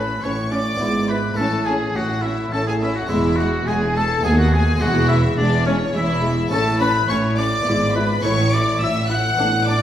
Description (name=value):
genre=classical, baroque-style concerto movement with solo episodes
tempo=105 BPM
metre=3/4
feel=straight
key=A major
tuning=A4 = 441 Hz
part: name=warm oboe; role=melody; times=0.0-9.8 s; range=C#4 to F#5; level=-24 LUFS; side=left 1 dB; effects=none
part: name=warm studio violin section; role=melody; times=0.0-9.8 s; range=C#5 to F#6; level=-27 LUFS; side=left 3 dB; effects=none
part: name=warm symphonic violin section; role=second line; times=0.0-9.8 s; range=C#4 to F#5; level=-26 LUFS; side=left 2 dB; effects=none
part: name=harpsichord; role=accompaniment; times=0.0-9.8 s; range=D#2 to B4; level=-27 LUFS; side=equal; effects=none
part: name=warm chamber viola section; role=accompaniment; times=0.0-9.8 s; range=G#3 to E4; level=-28 LUFS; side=right 1 dB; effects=none
part: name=warm studio double bass section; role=bass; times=0.0-9.8 s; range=E1 to D#2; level=-24 LUFS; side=right 1 dB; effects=none
part: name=warm symphonic cello section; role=bass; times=0.0-9.8 s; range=D#2 to A2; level=-23 LUFS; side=right 1 dB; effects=none
room=wet recital hall reverb, RT60 1.6 s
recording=heard from further back in the room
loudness=-17 LUFS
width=side -10 dB against mid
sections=0.0-9.8 A section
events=none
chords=0.0 A; 0.8 E7/G#; 1.4 A; 3.1 E; 4.3 B7/D#; 4.8 E; 6.5 A; 7.7 E7/G#; 8.2 A